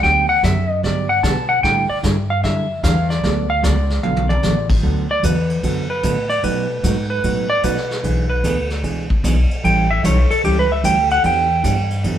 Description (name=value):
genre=country, western swing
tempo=150 BPM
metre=4/4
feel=swing 66% on 8ths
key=D major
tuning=A4 = 440 Hz
part: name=clean lap steel guitar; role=melody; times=0.0-11.9 s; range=G4 to A5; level=-19 LUFS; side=equal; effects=none
part: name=hollow-body jazz guitar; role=accompaniment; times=0.0-12.2 s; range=B2 to A4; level=-23 LUFS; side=right 2 dB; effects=none
part: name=upright bass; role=bass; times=0.0-12.2 s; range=A1 to B2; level=-20 LUFS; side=equal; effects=none
part: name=vintage brush drum kit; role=drums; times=0.0-12.2 s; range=brushed snare drum, crash cymbal, hi-hat, kick drum, ride cymbal, snare drum, toms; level=-25 LUFS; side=equal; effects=none
room=moderate stone room reverb, RT60 1.0 s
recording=band playing live in one room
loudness=-15 LUFS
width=side -10 dB against mid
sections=0.0-4.8 A section; 4.8-12.2 A section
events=electric slide guitar solo 0.0-4.8, 4.8-12.2; drum fill 4.0-4.4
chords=0.0 Gmaj7; 1.6 A7sus4; 3.2 D6; 6.4 B7; 8.0 E7/B; 9.6 A7; 11.2 Em7